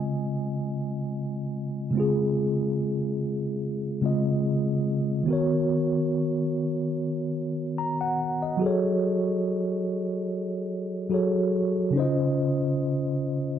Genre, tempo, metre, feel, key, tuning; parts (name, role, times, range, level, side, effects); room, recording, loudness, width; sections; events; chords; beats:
R&B; 72 BPM; 4/4; swing 54% on 16ths; Db major; A4 = 440 Hz
mellow tine electric piano; solo; 0.0-13.6 s; Db3 to Bb5; -24 LUFS; equal; medium stereo tremolo
moderate echo chamber reverb, RT60 1.8 s; dark, warm production; -24 LUFS; side -9 dB against mid
0.0-13.6 A section
0.0 Dbmaj7; 5.3 Cbmaj7/Eb; 8.6 Gbmadd9; 11.9 Dbmaj7
0.28 1.11 | 1.94 2.77 3.61 4.44 | 5.28 6.11 6.94 7.78 | 8.61 9.44 10.28 11.11 | 11.94 12.78